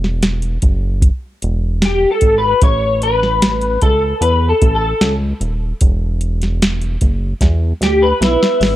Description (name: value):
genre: indie pop, bedroom pop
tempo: 75 BPM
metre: 4/4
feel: straight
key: unclear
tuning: A4 = 441 Hz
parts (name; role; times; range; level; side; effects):
- chorused synth bass; bass; 0.0-8.8 s; D#1 to E2; -17 LUFS; equal; none
- soft vintage rhythm box; drums; 0.0-8.8 s; hi-hat, kick drum, snare drum; -15 LUFS; equal; overdrive
- electric guitar through a small old amp; accompaniment; 1.9-8.8 s; E4 to C#5; -14 LUFS; left 2 dB; ensemble chorus, vibrato effect
- soft octave-layered synth lead; melody; 8.2-8.8 s; B4; -15 LUFS; right 2 dB; tremolo, lush chorus
room: light reverb, digital ambience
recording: none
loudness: -13 LUFS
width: side -14 dB against mid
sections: 0.0-8.8 A section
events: clean electric guitar solo 0.0-8.8; drum fill 7.4-8.8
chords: 0.0 Esus2; 2.6 A; 5.8 E5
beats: 0.22 1.02 1.82 | 2.62 3.42 4.22 5.02 | 5.82 6.62 7.42 8.22